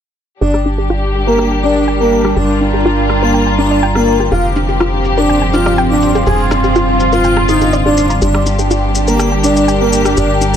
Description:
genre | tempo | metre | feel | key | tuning
melodic techno | 123 BPM | 4/4 | straight | G minor | A4 = 440 Hz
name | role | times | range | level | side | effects
expressive portamento lead | melody | 0.4-10.3 s | Bb3 to Ab4 | -18 LUFS | equal | chorus, ping-pong delay
airy dreamy lead | second line | 0.4-10.3 s | Bb4 to Ab5 | -20 LUFS | left 1 dB | chorus, ping-pong delay
dark studio string section | sustained chords | 0.4-10.6 s | F3 to G4 | -17 LUFS | left 1 dB | low-pass filter
soft round pluck | arpeggios | 0.4-10.6 s | D4 to Bb5 | -20 LUFS | equal | chorus, ping-pong delay
tight sequencer bass | bass | 0.4-10.6 s | F1 to G1 | -17 LUFS | equal | none
analog drone | drone | 2.7-10.6 s | G2 to D3 | -22 LUFS | left 1 dB | chorus
electronic shaker and rim click | drums | 0.4-10.6 s | none | -24 LUFS | left 1 dB | low-pass filter on perc, low-pass filter on snare
warbly tape-like pad | texture | 0.9-10.6 s | C4 to C6 | -19 LUFS | right 2 dB | chorus, built-in reverb
room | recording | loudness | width
light reverb, digital ambience | none | -10 LUFS | side -9 dB against mid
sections
0.4-10.6 A section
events
filter sweep on drum 0.4-10.6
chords
0.4 Gm; 4.3 F5; 8.2 Gm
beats
| 0.41 0.90 1.39 1.88 | 2.37 2.85 3.34 3.83 | 4.32 4.80 5.29 5.78 | 6.27 6.75 7.24 7.73 | 8.22 8.71 9.19 9.68 | 10.17

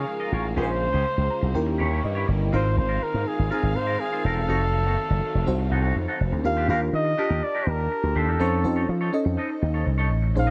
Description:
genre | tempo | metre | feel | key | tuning
pop | 123 BPM | 4/4 | straight | unclear | A4 = 440 Hz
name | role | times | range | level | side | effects
warm flugelhorn | melody | 0.0-10.5 s | Ab4 to F5 | -30 LUFS | equal | none
FM electric piano with soft pad layer | accompaniment | 0.0-10.5 s | C4 to Bb5 | -32 LUFS | equal | lush chorus
warm studio string section | sustained chords | 0.0-6.4, 10.3-10.5 s | Db3 to F5 | -38 LUFS | equal | none
clean electric guitar | riff | 0.0-10.5 s | C4 to Eb5 | -35 LUFS | equal | lush chorus
slap bass with an envelope filter | bass | 0.0-10.5 s | E1 to F3 | -26 LUFS | equal | none
room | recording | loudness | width
light reverb, studio reverb | none | -24 LUFS | mono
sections
0.0-6.4 A section; 6.4-10.5 B section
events
FM electric piano fill 1.1-2.5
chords
0.0 Db6; 0.6 Bbm9; 1.5 Eb7b9; 2.5 Ab69; 4.5 F7b9; 6.4 Ebmaj7; 8.4 F7b13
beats
0.08 | 0.57 1.06 1.55 2.04 | 2.53 3.02 3.51 4.00 | 4.49 4.98 5.47 5.96 | 6.45 6.93 7.42 7.91 | 8.40 8.89 9.38 9.87 | 10.36

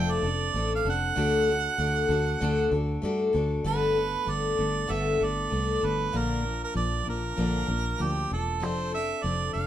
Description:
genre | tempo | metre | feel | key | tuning
folk rock and heartland rock | 97 BPM | 4/4 | straight | unclear | A4 = 440 Hz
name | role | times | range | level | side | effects
clear harmonica | melody | 0.0-9.7 s | G4 to G5 | -30 LUFS | right 6 dB | none
picked steel-string acoustic guitar | accompaniment | 0.0-9.7 s | G2 to Bb4 | -28 LUFS | left 3 dB | none
fingered electric bass | bass | 0.0-9.7 s | E1 to G2 | -30 LUFS | equal | none
room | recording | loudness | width
moderate studio reverb, RT60 0.8 s | band playing live in one room | -24 LUFS | side -11 dB against mid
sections
0.0-3.7 A section; 3.7-9.7 B section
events
harmonica solo 0.0-3.7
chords
0.0 F6; 1.2 D; 3.7 Gadd9; 6.1 Bb; 8.6 F6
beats
0.56 | 1.18 1.80 2.42 3.04 | 3.66 4.28 4.90 5.52 | 6.14 6.76 7.38 8.00 | 8.62 9.24

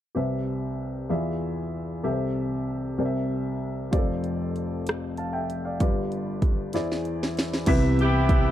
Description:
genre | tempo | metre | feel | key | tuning
slow gospel | 64 BPM (dotted quarters) | 6/8 | straight | C major | A4 = 441 Hz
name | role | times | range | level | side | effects
warm baby grand piano | accompaniment | 0.1-8.5 s | F1 to A5 | -26 LUFS | left 1 dB | none
techno drum kit | drums | 3.9-8.4 s | crash cymbal, hi-hat, kick drum, rim click, snare drum | -24 LUFS | right 1 dB | none
tonewheel organ | sustained chords | 7.7-8.5 s | C3 to G4 | -30 LUFS | right 6 dB | fast rotary speaker, overdrive, chorus vibrato
hollow-body short-scale fingered electric bass | bass | 7.7-8.5 s | C2 | -23 LUFS | equal | none
warm saxophone section | melody | 8.0-8.5 s | B3 to G4 | -25 LUFS | left 1 dB | none
room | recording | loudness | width
digital ambience | dry, close 1970s-style studio recording | -24 LUFS | side -12 dB against mid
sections
0.2-7.7 A section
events
drum fill 6.7-7.7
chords
0.2 Cmaj7; 1.1 E7b9; 2.0 Am7/C; 3.0 C7; 3.9 F6; 5.8 G7; 6.7 Eaug7; 7.7 Cmaj7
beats
| 0.15 1.09 | 2.04 2.98 | 3.92 4.86 | 5.80 6.73 | 7.67

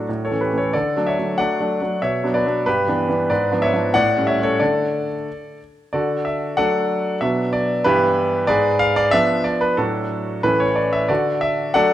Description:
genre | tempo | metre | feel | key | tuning
classical-period piano sonatina | 93 BPM | 2/4 | straight | D major | A4 = 442 Hz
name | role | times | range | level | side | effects
bright concert grand piano | solo | 0.0-11.9 s | G2 to F#5 | -17 LUFS | equal | none
room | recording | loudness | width
moderate recital hall reverb, RT60 1.7 s | close, detailed microphones | -17 LUFS | side -12 dB against mid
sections
0.0-5.9 A section; 5.9-11.9 B section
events
none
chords
0.1 A; 0.7 D; 2.0 Bm; 2.7 Em7/G; 3.3 G#dim7; 3.9 A7; 4.6 D5; 5.9 D; 7.2 Bm; 7.9 Em7/G; 8.5 G#dim7; 9.8 D/A; 10.4 A; 11.1 D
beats
0.08 | 0.74 1.39 | 2.03 2.67 | 3.30 3.95 | 4.61 5.27 | 5.93 6.58 | 7.22 7.85 | 8.49 9.13 | 9.78 10.44 | 11.10 11.74

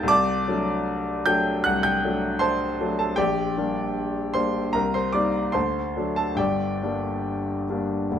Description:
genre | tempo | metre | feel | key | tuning
classical, romantic character piece for solo piano | 69-80 BPM | 4/4 | rubato | G minor | A4 = 439 Hz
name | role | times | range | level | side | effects
clear grand piano | solo | 0.0-8.2 s | G1 to A6 | -22 LUFS | equal | none
room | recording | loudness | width
moderate recital hall reverb, RT60 1.4 s | close, detailed microphones | -22 LUFS | side -9 dB against mid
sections
0.0-8.2 A section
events
none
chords
0.1 D7/C; 3.2 Gm/Bb; 4.8 Cm7; 5.5 D7; 6.4 Gm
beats
| 0.10 0.87 1.64 2.42 | 3.19 3.96 4.75 5.55 | 6.39 7.25 8.11

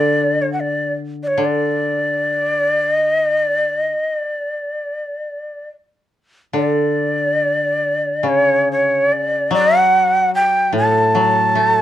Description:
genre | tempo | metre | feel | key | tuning
japanese traditional | 65-75 BPM | 4/4 | rubato | D ryukyu | A4 = 441 Hz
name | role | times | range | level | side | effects
breathy shakuhachi | melody | 0.0-11.8 s | C#5 to A5 | -16 LUFS | equal | none
koto | accompaniment | 0.0-11.8 s | A2 to A3 | -21 LUFS | left 2 dB | none
room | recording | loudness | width
light reverb | dark, warm production | -15 LUFS | side -12 dB against mid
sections
0.0-6.5 A section; 6.5-11.8 B section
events
none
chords
none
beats
0.57 1.39 2.23 | 3.07 3.91 4.76 5.65 | 6.54 7.41 8.26 9.10 | 9.93 10.75 11.56

